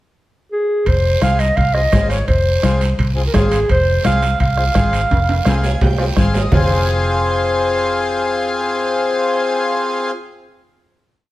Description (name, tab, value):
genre	latin, cumbia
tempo	170 BPM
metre	4/4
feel	straight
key	F minor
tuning	A4 = 440 Hz
part	mellow clarinet	melody	0.5-6.1 s	Ab4 to F5	-18 LUFS	right 1 dB	slapback echo
part	vintage muted fingered electric bass	bass	0.9-10.8 s	F1 to C2	-18 LUFS	equal	none
part	bombo	percussion	0.9-6.6 s	none	-20 LUFS	equal	none
part	congas	percussion	0.9-6.6 s	none	-22 LUFS	left 2 dB	none
part	guiro	percussion	0.9-6.6 s	none	-30 LUFS	right 6 dB	none
part	timbales	percussion	0.9-6.6 s	none	-26 LUFS	right 4 dB	none
part	accordion	accompaniment	1.2-10.1 s	C4 to Ab5	-19 LUFS	left 2 dB	none
room	moderate large studio reverb, RT60 1.2 s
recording	none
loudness	-14 LUFS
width	side -16 dB against mid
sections	0.0-0.9 pickup bar; 0.9-6.5 A section; 6.5-9.4 final chord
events	drum fill 5.1-6.5; accordion fill 5.5-6.5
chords	0.0 N.C.; 0.9 Fm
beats	0.15 0.51 | 0.86 1.22 1.57 1.92 | 2.28 2.63 2.98 3.34 | 3.69 4.05 4.40 4.75 | 5.11 5.46 5.81 6.17 | 6.52 6.87 7.23 7.58 | 7.93 8.29 8.64 9.00